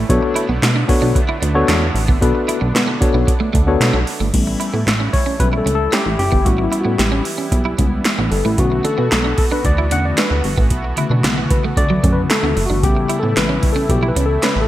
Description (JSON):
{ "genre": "early-eighties boogie funk", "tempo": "113 BPM", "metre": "4/4", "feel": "straight", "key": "unclear", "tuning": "A4 = 439 Hz", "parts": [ { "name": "brassy analog pad", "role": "sustained chords", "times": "0.0-14.7 s", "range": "D3 to F#4", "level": "-26 LUFS", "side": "right 2 dB", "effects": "chorus" }, { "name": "clean electric guitar", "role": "riff", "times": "0.0-14.6 s", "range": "F#3 to E4", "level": "-25 LUFS", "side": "right 4 dB", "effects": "analog chorus" }, { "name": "plucky analog bass", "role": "bass", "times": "0.0-14.7 s", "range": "F#1 to B2", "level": "-18 LUFS", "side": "right 1 dB", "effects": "none" }, { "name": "tine electric piano", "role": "accompaniment", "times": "0.1-14.7 s", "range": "C#3 to F#5", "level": "-19 LUFS", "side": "left 3 dB", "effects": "medium stereo tremolo" }, { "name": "electro analog drum machine", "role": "drums", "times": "0.1-14.6 s", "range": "crash cymbal, handclaps, hi-hat, kick drum, snare drum", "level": "-18 LUFS", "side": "right 1 dB", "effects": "overdrive, gated reverb" } ], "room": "light reverb", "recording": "bright 1980s-style digital production", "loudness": "-14 LUFS", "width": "side -14 dB against mid", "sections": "0.0-4.3 A section; 4.3-14.7 B section", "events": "tine electric piano solo 4.3-14.7", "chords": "0.1 Bm9; 4.3 A7; 8.6 Bm9; 12.8 A7", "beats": "| 0.09 0.62 1.15 1.68 | 2.21 2.75 3.28 3.81 | 4.34 4.87 5.40 5.93 | 6.46 6.99 7.53 8.06 | 8.59 9.12 9.65 10.18 | 10.71 11.24 11.77 12.30 | 12.84 13.37 13.90 14.43" }